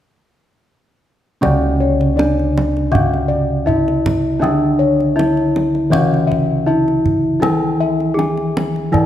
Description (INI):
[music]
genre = Javanese gamelan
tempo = 80 BPM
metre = 4/4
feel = straight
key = unclear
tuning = A4 = 440 Hz
[part]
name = gamelan-type bronze metallophone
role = melody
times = 1.4-9.1 s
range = C#4 to G#4-30c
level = -19 LUFS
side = equal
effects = none
[part]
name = gamelan-type bronze metallophone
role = accompaniment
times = 1.4-9.1 s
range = C#3 to E3-30c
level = -19 LUFS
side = right 1 dB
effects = none
[part]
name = gamelan-type bossed gongs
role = arpeggios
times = 1.4-9.1 s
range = C#5 to G#5-30c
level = -21 LUFS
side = left 6 dB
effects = none
[part]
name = gamelan-type bossed gongs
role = bass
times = 1.4-9.1 s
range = C#2 to E4-30c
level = -20 LUFS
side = equal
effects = none
[part]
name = kendang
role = percussion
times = 1.4-9.1 s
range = none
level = -23 LUFS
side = right 2 dB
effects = none
[sound]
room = moderate recital hall reverb, RT60 1.8 s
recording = none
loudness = -14 LUFS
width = side -11 dB against mid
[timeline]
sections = 1.4-9.1 A section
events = none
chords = none